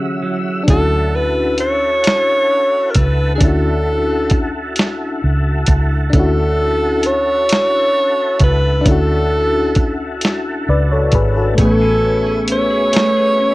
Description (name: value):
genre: slow six-eight R&B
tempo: 44 BPM (dotted quarters)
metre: 6/8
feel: straight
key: unclear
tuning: A4 = 440 Hz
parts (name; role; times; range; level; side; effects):
- semi-hollow electric guitar; second line; 0.0-1.3, 11.6-13.5 s; D3 to G#4; -21 LUFS; right 2 dB; phaser, slapback echo
- FM electric piano with tremolo; accompaniment; 0.0-13.5 s; D3 to D5; -21 LUFS; left 3 dB; none
- tonewheel organ; sustained chords; 0.0-13.5 s; C#4 to E6; -26 LUFS; equal; overdrive, chorus vibrato, slow rotary speaker
- breathy alto saxophone; melody; 0.7-13.5 s; Ab4 to C#5; -16 LUFS; equal; none
- vintage muted fingered electric bass; bass; 0.7-13.5 s; Ab1 to D2; -17 LUFS; equal; tube saturation
- dusty soul sampler-style drum kit; drums; 0.7-13.2 s; hi-hat, kick drum, snare drum; -15 LUFS; equal; none
room: light reverb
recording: worn, warbling old tape, cassette tape, warbly pitch drift, low-pass filter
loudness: -13 LUFS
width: side -19 dB against mid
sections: 0.7-13.5 A section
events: break 0.0-0.7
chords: 0.0 Dmaj9; 11.6 Amaj9